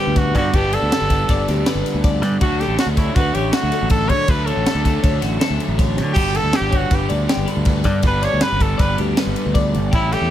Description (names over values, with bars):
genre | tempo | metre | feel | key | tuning
math rock and midwest emo | 160 BPM | 5/4 | straight | unclear | A4 = 440 Hz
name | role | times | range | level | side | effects
clear trumpet | melody | 0.0-10.3 s | E4 to C#5 | -22 LUFS | right 1 dB | plate reverb
twelve-string electric guitar | accompaniment | 0.0-0.5 s | D3 | -33 LUFS | right 4 dB | none
twelve-string electric guitar | arpeggios | 0.0-10.3 s | F#4 to D5 | -26 LUFS | left 5 dB | wide subtle chorus, plate reverb
biting overdriven guitar | riff | 0.0-10.3 s | G2 to E4 | -23 LUFS | right 1 dB | none
growling fingered electric bass | bass | 0.1-10.3 s | G1 to D3 | -21 LUFS | equal | overdrive
crisp fusion drum kit | drums | 0.2-10.2 s | crash cymbal, kick drum, ride cymbal, snare drum | -20 LUFS | equal | none
room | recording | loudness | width
light reverb | none | -15 LUFS | side -11 dB against mid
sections
0.0-10.3 A section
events
none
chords
0.0 Gadd9; 2.4 Dmaj7; 6.2 G